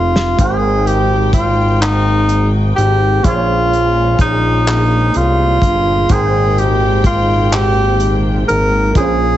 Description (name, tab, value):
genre	slow six-eight R&B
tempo	42 BPM (dotted quarters)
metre	6/8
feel	straight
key	unclear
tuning	A4 = 437 Hz
part	mellow tenor saxophone	melody	0.0-9.4 s	Eb4 to Bb4	-15 LUFS	equal	none
part	barky tine electric piano	accompaniment	0.0-9.4 s	F3 to G5	-22 LUFS	right 6 dB	overdrive, ensemble chorus
part	fat analog bass	bass	0.0-9.4 s	F1 to C2	-15 LUFS	equal	none
part	warm soul drum kit	drums	0.2-9.2 s	handclaps, hi-hat, kick drum, snare drum	-17 LUFS	equal	none
part	warm studio string section	sustained chords	0.4-9.4 s	Bb2 to G5	-25 LUFS	left 1 dB	none
room	studio reverb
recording	heavily compressed radio sound, multiband compression, nothing above 8.0 kHz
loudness	-11 LUFS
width	side -12 dB against mid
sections	0.4-9.4 A section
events	drum fill 0.0-0.4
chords	0.4 Abmaj9; 3.2 Bbm9; 6.1 Abmaj9